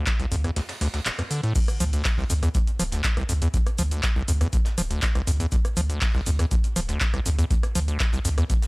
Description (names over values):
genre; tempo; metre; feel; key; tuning
acid house; 121 BPM; 4/4; straight; D minor; A4 = 440 Hz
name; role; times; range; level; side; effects
dark analog pad; sustained chords; 0.0-1.5 s; A3 to F5; -54 LUFS; left 1 dB; none
acid bass, square; riff; 0.0-8.5 s; D1 to F3; -26 LUFS; equal; tube saturation, sidechain pumping, tape echo
electro analog drum machine; drums; 0.1-8.7 s; crash cymbal, handclaps, hi-hat, rim click, shaker; -29 LUFS; equal; none
electronic kick drum; drums; 0.1-8.6 s; none; -24 LUFS; equal; none
soft brush drum kit; drums; 0.1-8.7 s; hi-hat, shaker, snare drum; -39 LUFS; right 1 dB; none
warm sub bass; bass; 0.3-8.4 s; D1 to D2; -25 LUFS; equal; sidechain pumping
room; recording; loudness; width
studio reverb; dry, gritty hardware recording, transformer saturation; -21 LUFS; side -26 dB against mid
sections
0.0-1.6 A section; 1.6-8.7 B section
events
kick drops out 0.6-1.6; band accent 1.1; drop 1.6-8.7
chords
0.0 Dm7; 1.6 N.C.